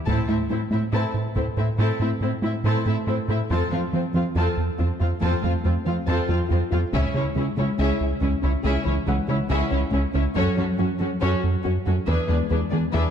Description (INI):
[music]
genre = cinematic, hybrid orchestral and electronic film score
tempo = 70 BPM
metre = 4/4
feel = straight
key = unclear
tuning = A4 = 438 Hz
[part]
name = felt-muted upright piano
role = texture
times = 0.0-13.1 s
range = B3 to C6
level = -36 LUFS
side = left 4 dB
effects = ping-pong delay
[part]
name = warm symphonic violin section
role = second line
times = 0.1-13.1 s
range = C4 to A5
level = -30 LUFS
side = left 4 dB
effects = none
[part]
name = clear symphonic viola section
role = accompaniment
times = 0.1-13.1 s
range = C4 to G#4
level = -29 LUFS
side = right 1 dB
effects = none
[part]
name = soft round pluck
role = arpeggios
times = 0.1-13.1 s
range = C#3 to A4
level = -30 LUFS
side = left 5 dB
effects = chorus, ping-pong delay
[part]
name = rubbery square bass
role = riff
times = 0.1-13.1 s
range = C#2 to A3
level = -24 LUFS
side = right 1 dB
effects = none
[part]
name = rich symphonic cello section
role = bass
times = 0.1-13.0 s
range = C#2 to A2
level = -29 LUFS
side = right 2 dB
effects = none
[part]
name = taiko ensemble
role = drums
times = 0.1-1.8, 6.9-8.6 s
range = none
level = -32 LUFS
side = equal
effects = none
[sound]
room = wet concert hall reverb, RT60 2.2 s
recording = dark, warm production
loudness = -21 LUFS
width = side -8 dB against mid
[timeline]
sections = 0.1-13.1 A section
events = none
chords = 0.1 Am; 3.5 F; 6.9 C#m; 10.4 F#m; 12.1 E7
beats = | 0.08 0.94 1.79 2.65 | 3.51 4.36 5.22 6.08 | 6.93 7.79 8.65 9.51 | 10.36 11.22 12.08 12.94